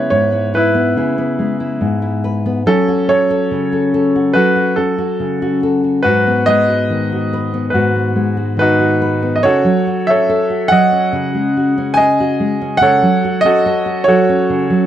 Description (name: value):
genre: acoustic folk-pop ballad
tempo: 71 BPM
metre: 4/4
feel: straight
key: unclear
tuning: A4 = 440 Hz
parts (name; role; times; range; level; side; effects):
- bright baby grand piano; melody; 0.0-14.9 s; C#4 to G#5; -14 LUFS; right 1 dB; none
- nylon-string guitar; accompaniment; 0.0-14.9 s; G#2 to B4; -16 LUFS; left 1 dB; none
room: light reverb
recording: dark, warm production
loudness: -12 LUFS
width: side -11 dB against mid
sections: 0.0-9.4 A section; 9.4-14.9 B section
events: none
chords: 0.0 C#m7; 2.7 F#m; 6.0 G#m7; 9.4 F#m/C#; 11.1 G#7sus4/C#; 12.8 F#m/C#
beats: 0.12 0.96 1.81 | 2.65 3.50 4.34 5.19 | 6.04 6.89 7.74 8.59 | 9.44 10.29 11.13 11.97 | 12.81 13.66 14.50